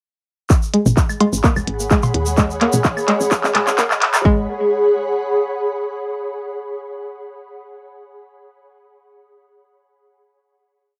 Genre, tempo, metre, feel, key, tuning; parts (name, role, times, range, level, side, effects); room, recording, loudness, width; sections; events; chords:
minimal techno; 128 BPM; 4/4; straight; G# minor; A4 = 439 Hz
electronic kick drum; drums; 0.5-4.4 s; -18 LUFS; equal; cassette tape
minimal click drum kit; drums; 0.5-4.2 s; handclaps, hi-hat; -21 LUFS; equal; high-pass filter on snare, cassette tape, high-pass filter on hats
egg shaker; percussion; 0.5-4.2 s; -32 LUFS; equal
ethereal airy pad; texture; 1.8-6.1 s; G#4 to B5; -23 LUFS; equal; ensemble chorus, built-in reverb, sidechain pumping, cassette tape
string-like resonator pluck; riff; 0.7-4.5 s; G#3 to A#3; -22 LUFS; equal; chorus, sidechain pumping, cassette tape, analog delay
woody FM bass; bass; 0.9-4.5 s; D#1 to D#2; -25 LUFS; equal; sidechain pumping
electronic toms, claves and cowbell; percussion; 0.9-4.2 s; -24 LUFS; equal; cassette tape
wet small room reverb, RT60 0.6 s; home recording on cassette, high-pass filter; -18 LUFS; mono
0.5-4.3 build; 4.3-6.1 final chord
build-up 0.5-4.3; drum fill 0.5-4.3; filter sweep on synth pluck 0.5-4.3; filter sweep 0.5-4.3
0.5 G#m